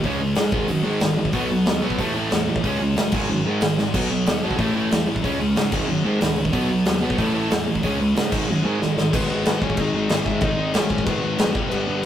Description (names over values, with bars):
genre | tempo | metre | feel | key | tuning
punk rock | 185 BPM | 4/4 | straight | unclear | A4 = 441 Hz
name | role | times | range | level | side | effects
cranked stack guitar | riff | 0.0-9.1 s | G#2 to C#4 | -24 LUFS | right 4 dB | overdrive
overdriven electric guitar | riff | 0.0-12.1 s | G2 to C#4 | -27 LUFS | left 4 dB | none
scooped high-gain guitar | riff | 0.0-12.1 s | G2 to C#4 | -28 LUFS | left 2 dB | distortion
fuzz picked electric bass | bass | 0.0-12.0 s | F#1 to G#2 | -27 LUFS | equal | overdrive
big rock drum kit | drums | 0.0-11.8 s | crash cymbal, hi-hat, kick drum, snare drum | -24 LUFS | equal | none
dark smooth lead guitar | melody | 9.1-12.1 s | B3 to E5 | -28 LUFS | equal | overdrive
room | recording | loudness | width
moderate small room reverb, RT60 0.6 s | rough rehearsal-room recording | -19 LUFS | side -10 dB against mid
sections
0.0-9.1 A section; 9.1-12.1 B section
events
drum fill 3.8, 8.8-9.1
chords
0.0 C#5; 0.5 G#5; 1.3 B; 2.0 A5; 2.6 C#5; 3.1 G#5; 3.9 B; 4.6 A5; 5.2 C#5; 5.7 G#5; 6.5 B; 7.2 A5; 7.8 C#5; 8.3 G#5; 9.1 G#m